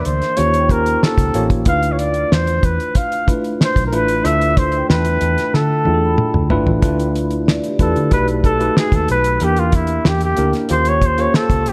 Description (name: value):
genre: lush 1970s-style soul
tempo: 93 BPM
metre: 4/4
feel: straight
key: D dorian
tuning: A4 = 439 Hz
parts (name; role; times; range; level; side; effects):
- warm flugelhorn; melody; 0.0-11.7 s; E4 to F5; -21 LUFS; equal; none
- tine electric piano; accompaniment; 0.0-11.7 s; E3 to Db5; -23 LUFS; equal; overdrive
- vibraphone with soft mallets; texture; 0.0-8.8 s; Eb4 to B5; -31 LUFS; equal; none
- vintage muted fingered electric bass; bass; 0.1-11.7 s; G1 to D3; -22 LUFS; equal; none
- cloth-damped thuddy drum kit; drums; 0.1-11.7 s; hi-hat, kick drum, snare drum, toms; -20 LUFS; equal; none
room: light reverb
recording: none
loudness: -16 LUFS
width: mono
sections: 0.0-6.8 A section; 6.8-11.7 B section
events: drum fill 5.5-6.8; flugelhorn solo 6.8-11.7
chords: 0.4 Eb13; 1.7 Dm69; 8.1 B7b13; 9.4 Em7b5; 10.7 Eb13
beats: 0.37 1.02 | 1.67 2.31 2.96 3.60 | 4.25 4.89 5.54 6.18 | 6.82 7.47 8.11 8.76 | 9.40 10.05 10.69 11.34